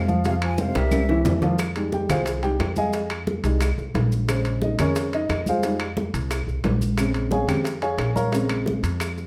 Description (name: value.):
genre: Afro-Cuban jazz.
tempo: 178 BPM.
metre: 4/4.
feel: straight.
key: F minor.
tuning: A4 = 440 Hz.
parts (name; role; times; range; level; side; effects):
breathy concert flute; melody; 0.0-1.4 s; E5 to Ab5; -34 LUFS; equal; none.
trombone with bucket mute; second line; 0.0-1.4 s; C3 to F3; -33 LUFS; equal; none.
dark baby grand piano; accompaniment; 0.0-8.8 s; Db3 to Bb5; -27 LUFS; equal; none.
upright bass; bass; 0.0-9.3 s; Bb1 to F2; -28 LUFS; equal; none.
bongos; percussion; 0.1-9.3 s; none; -35 LUFS; equal; none.
congas; percussion; 0.1-9.3 s; none; -31 LUFS; equal; none.
maracas; percussion; 0.1-9.3 s; none; -44 LUFS; equal; none.
timbales; percussion; 0.3-9.2 s; none; -34 LUFS; equal; none.
claves; percussion; 0.4-9.2 s; none; -39 LUFS; equal; none.
room: moderate large studio reverb, RT60 0.8 s.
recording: none.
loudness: -23 LUFS.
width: mono.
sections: 0.0-1.6 A section; 1.6-9.3 B section.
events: drum fill 0.2-1.6; grand piano solo 1.6-9.3.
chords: 0.0 Fm; 0.9 C7; 1.6 Fm7; 4.3 Bbm7; 5.6 Fm7; 7.0 Bbm7.